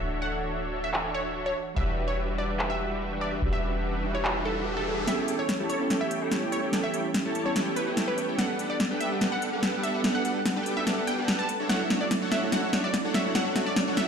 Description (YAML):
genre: future bass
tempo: 145 BPM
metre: 4/4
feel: half-time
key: D major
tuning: A4 = 441 Hz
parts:
  - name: wide unison pluck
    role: melody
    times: 0.0-14.1 s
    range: A4 to A5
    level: -33 LUFS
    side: equal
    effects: cassette tape, dub echo
  - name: glassy digital keys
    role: accompaniment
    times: 0.0-14.1 s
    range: G3 to F#5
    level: -34 LUFS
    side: right 3 dB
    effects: chorus, dub echo
  - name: airy breathy pad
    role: sustained chords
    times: 0.0-14.1 s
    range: E3 to F#5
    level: -36 LUFS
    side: right 1 dB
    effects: chorus
  - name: supersaw chords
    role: riff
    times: 0.0-14.1 s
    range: D4 to A5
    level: -31 LUFS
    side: equal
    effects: analog chorus, low-pass filter
  - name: warm 808-style bass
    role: bass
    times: 0.0-5.1 s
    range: D1 to E1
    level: -33 LUFS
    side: equal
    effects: none
  - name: big-room dance drum kit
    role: drums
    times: 0.9-14.1 s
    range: handclaps, hi-hat, snare drum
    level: -29 LUFS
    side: left 1 dB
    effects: overdrive, low-pass filter on snare, low-pass filter on hats
  - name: riser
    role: sound effects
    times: 3.1-5.1, 12.6-14.1 s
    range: none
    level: -37 LUFS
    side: right 2 dB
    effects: none
room: moderate lush hall reverb, RT60 2.1 s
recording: played on a big sound system in a bare room, stone room reverb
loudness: -25 LUFS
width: side -6 dB against mid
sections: 0.0-5.1 A section; 5.1-14.1 B section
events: riser 3.1-5.1; build-up 5.1-14.1; drum fill 5.1-14.1; filter sweep on supersaw synth 5.1-14.1; filter sweep on analog synth pad 5.1-14.1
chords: 0.0 Dmaj9; 1.8 Em9; 5.1 A7; 8.4 Gmaj9; 11.5 Dmaj9